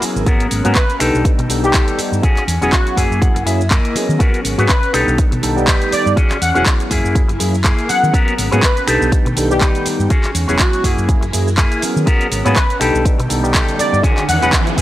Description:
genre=filtered disco house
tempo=122 BPM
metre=4/4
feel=swing 56% on 16ths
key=unclear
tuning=A4 = 440 Hz
part: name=tine electric piano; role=accompaniment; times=0.0-14.8 s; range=F#3 to D5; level=-21 LUFS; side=equal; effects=phaser, sidechain pumping, low-pass filter
part: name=string machine, full ensemble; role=sustained chords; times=0.0-14.8 s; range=D#3 to A#5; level=-28 LUFS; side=equal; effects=ensemble chorus, sidechain pumping, low-pass filter
part: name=electric guitar with an envelope filter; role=riff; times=0.0-14.8 s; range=A#3 to G#5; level=-21 LUFS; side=left 2 dB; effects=spring reverb, sidechain pumping, low-pass filter
part: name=hollow-body short-scale fingered electric bass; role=bass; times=0.0-14.8 s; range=E1 to D#3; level=-19 LUFS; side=equal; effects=transformer saturation, sidechain pumping, low-pass filter
part: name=house drum kit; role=drums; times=0.0-14.8 s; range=finger snaps, handclaps, hi-hat, shaker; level=-21 LUFS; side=equal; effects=sidechain pumping on hats, sidechain pumping on perc
part: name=electronic kick drum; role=drums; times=0.3-14.8 s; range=none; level=-15 LUFS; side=equal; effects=none
part: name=analog synth brass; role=melody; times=0.8-14.5 s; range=F#4 to F#5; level=-20 LUFS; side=equal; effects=chorus, vintage 12-bit sampler grit, sidechain pumping, low-pass filter
part: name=riser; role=sound effects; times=13.2-14.8 s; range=none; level=-24 LUFS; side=right 2 dB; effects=none
room=little or no reverb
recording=dry, gritty hardware recording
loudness=-12 LUFS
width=side -14 dB against mid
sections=0.0-14.8 A section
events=clean electric guitar fill 2.7-4.2; riser 13.2-14.8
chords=0.3 G#m11; 1.0 B7alt; 2.2 E69; 3.0 F#9; 4.2 G#m11; 4.9 B7alt; 6.2 E69; 6.9 F#9; 8.1 G#m11; 8.9 B7alt; 10.1 E69; 10.8 F#9; 12.1 G#m11; 12.8 B7alt; 14.0 E69

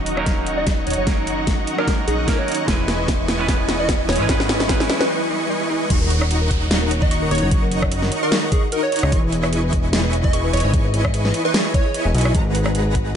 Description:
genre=future bass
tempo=149 BPM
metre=4/4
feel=swing 55% on 16ths, half-time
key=unclear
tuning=A4 = 440 Hz
part: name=semi-hollow electric guitar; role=accompaniment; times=0.0-5.1 s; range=F#3 to B4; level=-27 LUFS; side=right 4 dB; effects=sidechain pumping, ping-pong delay
part: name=dark chamber string section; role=sustained chords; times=0.0-13.2 s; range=D#3 to D#5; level=-33 LUFS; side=left 2 dB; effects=none
part: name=dense compressed supersaw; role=riff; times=0.0-13.2 s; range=G#3 to C#6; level=-24 LUFS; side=equal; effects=sidechain pumping, low-pass filter
part: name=fat analog bass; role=bass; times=0.0-13.2 s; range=D#1 to C#2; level=-22 LUFS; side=equal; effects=sidechain pumping
part: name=riser and downlifter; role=sound effects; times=3.7-9.1 s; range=none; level=-33 LUFS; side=right 1 dB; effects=none
part: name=dubstep drum kit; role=drums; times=0.1-13.0 s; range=crash cymbal, hi-hat, rim click, snare drum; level=-23 LUFS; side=equal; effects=none
part: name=electronic kick drum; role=drums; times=0.3-13.0 s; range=none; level=-20 LUFS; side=equal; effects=overdrive
part: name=plucky unison lead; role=melody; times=0.6-12.1 s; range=G#4 to D#5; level=-25 LUFS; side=right 1 dB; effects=sidechain pumping, ping-pong delay
part: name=thumb-piano-like synth pluck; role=arpeggios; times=5.9-13.1 s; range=F#4 to G#5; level=-31 LUFS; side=equal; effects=chorus, sidechain pumping, ping-pong delay
part: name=wide unison pluck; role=arpeggios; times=5.9-13.2 s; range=A#5 to C#6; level=-33 LUFS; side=equal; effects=sidechain pumping, ping-pong delay
room=light reverb, digital ambience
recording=nothing above 10.8 kHz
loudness=-17 LUFS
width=side -8 dB against mid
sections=0.0-5.9 A section; 5.9-13.2 B section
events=build-up 0.0-5.9; drum fill 0.0-5.1; filter sweep on digital synth lead 0.0-5.9; break 5.1-5.9; drop 5.9-13.2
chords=0.0 D#m7; 2.7 C#m7/E; 5.9 D#m7; 9.1 C#m7/E; 12.3 G#m7

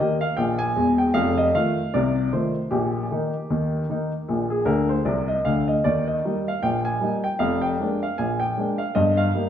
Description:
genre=ragtime piano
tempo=77 BPM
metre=2/4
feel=swing 56% on 16ths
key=Eb major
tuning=A4 = 439 Hz
part: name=warm baby grand piano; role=solo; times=0.0-9.5 s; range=Fb1 to Ab5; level=-20 LUFS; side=equal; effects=none
room=wet recital hall reverb, RT60 1.6 s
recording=recorded in a church or concert hall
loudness=-20 LUFS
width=side -9 dB against mid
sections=0.0-9.5 A section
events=grand piano fill 4.7-5.8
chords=0.0 Eb; 1.1 F7; 2.7 Eb/Bb; 4.3 Bb; 5.8 Eb; 7.4 Bb7/F; 8.9 Eb/G

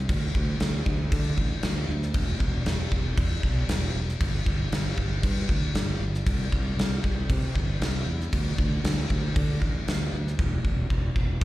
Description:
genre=hard rock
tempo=117 BPM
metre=4/4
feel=straight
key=unclear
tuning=A4 = 441 Hz
part: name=fuzz fingered electric bass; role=bass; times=0.0-11.4 s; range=E1 to D3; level=-27 LUFS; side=equal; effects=overdrive
part: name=gated 80s drum kit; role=drums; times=0.1-11.4 s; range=crash cymbal, kick drum, snare drum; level=-27 LUFS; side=equal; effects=none
room=little or no reverb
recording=live gig heard through the venue's PA, recital hall reverb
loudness=-24 LUFS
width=side -16 dB against mid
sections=0.0-11.4 A section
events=drum fill 10.4-11.4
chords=none

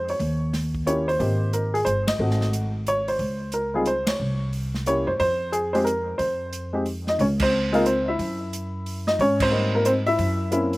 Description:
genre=jazz piano trio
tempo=180 BPM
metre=3/4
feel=swing 65% on 8ths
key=F minor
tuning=A4 = 443 Hz
part: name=warm upright piano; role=melody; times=0.0-10.8 s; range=G3 to E5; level=-23 LUFS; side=equal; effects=slapback echo
part: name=upright bass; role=bass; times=0.0-10.8 s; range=G1 to Ab2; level=-26 LUFS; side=equal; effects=none
part: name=swinging big-band drum kit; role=drums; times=0.1-10.8 s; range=crash cymbal, hi-hat, kick drum, ride cymbal, snare drum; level=-31 LUFS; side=right 1 dB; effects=none
room=little or no reverb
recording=recorded outdoors, with no room sound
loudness=-21 LUFS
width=side -20 dB against mid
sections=0.0-7.2 A section; 7.2-10.8 B section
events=band accent 2.0, 4.0, 7.4, 9.4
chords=0.2 Eb7(no3); 1.2 Abmaj9; 2.2 Ab7b9; 3.2 Dbmaj7(no3); 4.2 C5; 5.2 Fm; 7.2 Dbmaj7(no3); 8.2 Esus2/F#; 9.2 Abmaj9; 10.2 Gb7#11

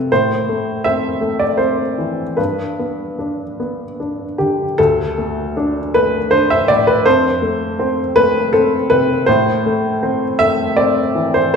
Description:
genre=neoclassical minimalist piano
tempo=74-82 BPM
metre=3/4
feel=rubato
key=D dorian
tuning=A4 = 440 Hz
part: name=warm upright piano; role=solo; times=0.0-11.6 s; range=D2 to E5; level=-14 LUFS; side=equal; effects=none
room=wet recital hall reverb, RT60 1.7 s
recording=heard from further back in the room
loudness=-14 LUFS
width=side -6 dB against mid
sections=0.0-4.8 A section; 4.8-11.6 A section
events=none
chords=0.1 Am; 2.4 G; 4.8 D5; 7.1 F; 9.3 Am

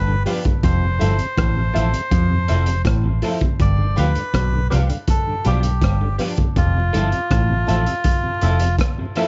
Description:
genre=roots reggae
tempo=81 BPM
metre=4/4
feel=straight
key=F lydian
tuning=A4 = 441 Hz
part: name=melodica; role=melody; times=0.0-8.8 s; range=F4 to D5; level=-28 LUFS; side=equal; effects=dub echo
part: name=overdriven clav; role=riff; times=0.0-8.6 s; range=F2 to F3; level=-30 LUFS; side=equal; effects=none
part: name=vintage muted fingered electric bass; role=bass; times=0.0-8.8 s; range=F1 to F2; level=-21 LUFS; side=equal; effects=none
part: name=semi-hollow electric guitar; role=accompaniment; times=0.1-9.3 s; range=F3 to A4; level=-32 LUFS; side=equal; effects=lush chorus, dub echo
part: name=tonewheel organ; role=accompaniment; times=0.1-9.3 s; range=F2 to F4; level=-32 LUFS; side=equal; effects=overdrive, chorus vibrato, stopped rotary speaker
part: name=filtered dub chord stab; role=stabs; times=0.3-9.3 s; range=F4 to F5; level=-30 LUFS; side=equal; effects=phaser
part: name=crunchy breakbeat drum kit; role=drums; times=0.3-9.3 s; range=hi-hat, kick drum, rim click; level=-24 LUFS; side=equal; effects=none
room=light reverb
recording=vinyl crackle, nothing above 7.7 kHz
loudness=-19 LUFS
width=mono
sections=0.0-9.3 A section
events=none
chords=0.0 G7; 0.6 Fmaj7; 3.6 G7; 6.6 Fmaj7

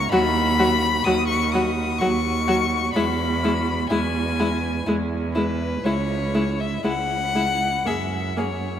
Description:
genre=classical, slow romantic movement for string quartet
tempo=55-64 BPM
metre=3/4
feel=rubato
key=B major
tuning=A4 = 442 Hz
part: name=rich violin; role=melody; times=0.0-8.8 s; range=B4 to D#6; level=-25 LUFS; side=left 6 dB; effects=none
part: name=clear violin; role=second line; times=0.1-8.5 s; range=E4 to G#4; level=-28 LUFS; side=left 3 dB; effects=none
part: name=rich viola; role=accompaniment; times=0.1-8.4 s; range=F#3 to A#3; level=-26 LUFS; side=equal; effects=none
part: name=clear cello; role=bass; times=0.1-8.8 s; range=C#2 to F#2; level=-25 LUFS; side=right 4 dB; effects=none
room=wet cathedral reverb, RT60 6.5 s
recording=in a vast, echoing space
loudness=-20 LUFS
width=side -9 dB against mid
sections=0.0-8.8 A section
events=none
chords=0.1 B/D#; 3.0 E; 5.8 C#m; 7.8 F#7

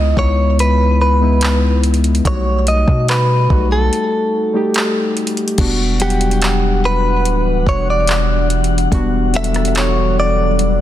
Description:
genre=contemporary R&B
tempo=72 BPM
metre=4/4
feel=straight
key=unclear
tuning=A4 = 441 Hz
part: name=direct-recorded clean electric guitar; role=melody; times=0.0-10.8 s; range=G4 to E5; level=-18 LUFS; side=equal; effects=digital delay
part: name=muted felt-like synth keys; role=accompaniment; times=0.0-10.8 s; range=F#3 to F#5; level=-19 LUFS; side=left 3 dB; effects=chorus
part: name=long sustained 808-style bass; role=bass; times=0.0-10.8 s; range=D1 to B2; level=-16 LUFS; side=equal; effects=none
part: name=smooth R&B drum kit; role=drums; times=0.2-10.8 s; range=crash cymbal, handclaps, hi-hat, kick drum, rim click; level=-20 LUFS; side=equal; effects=none
part: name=glassy FM pad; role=sustained chords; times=6.4-10.8 s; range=E3 to F#5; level=-22 LUFS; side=left 2 dB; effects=ensemble chorus, built-in reverb
room=light reverb, digital ambience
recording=dense, heavily limited modern master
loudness=-12 LUFS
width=side -12 dB against mid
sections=0.0-5.6 A section; 5.6-10.8 B section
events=break 3.9-5.6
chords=0.0 Dbm7; 2.3 B7b13; 5.6 Em9

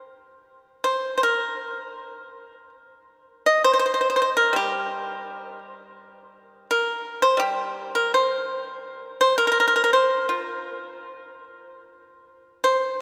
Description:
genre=chinese traditional, Chinese solo plucked strings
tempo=81 BPM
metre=4/4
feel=uneven beats, rubato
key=unclear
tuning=A4 = 441 Hz
part: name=pipa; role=solo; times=0.8-13.0 s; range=G3 to Eb5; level=-23 LUFS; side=equal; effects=none
room=wet cathedral reverb, RT60 4.1 s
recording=recorded in a church or concert hall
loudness=-22 LUFS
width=mono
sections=0.1-13.0 A section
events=none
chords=none

